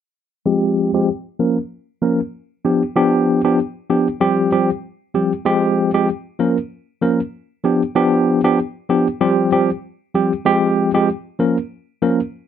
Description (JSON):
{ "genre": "afrobeats", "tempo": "96 BPM", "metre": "4/4", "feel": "swing 55% on 16ths", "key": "F minor", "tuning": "A4 = 440 Hz", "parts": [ { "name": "tine electric piano", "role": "solo", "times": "0.5-12.2 s", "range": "F3 to Bb4", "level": "-15 LUFS", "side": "equal", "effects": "medium stereo tremolo, low-pass filter" } ], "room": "moderate studio reverb, RT60 0.6 s", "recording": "none", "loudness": "-16 LUFS", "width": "side -9 dB against mid", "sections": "0.5-5.5 A section; 5.5-12.5 B section", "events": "filter sweep on tine electric piano 0.5-5.5", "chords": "0.5 Fmadd9; 1.4 Bbm; 2.6 G7; 4.2 Csus4; 5.5 Fmadd9; 6.4 Bbm; 7.6 G7; 9.2 Csus4; 10.5 Fmadd9; 11.4 Bbm" }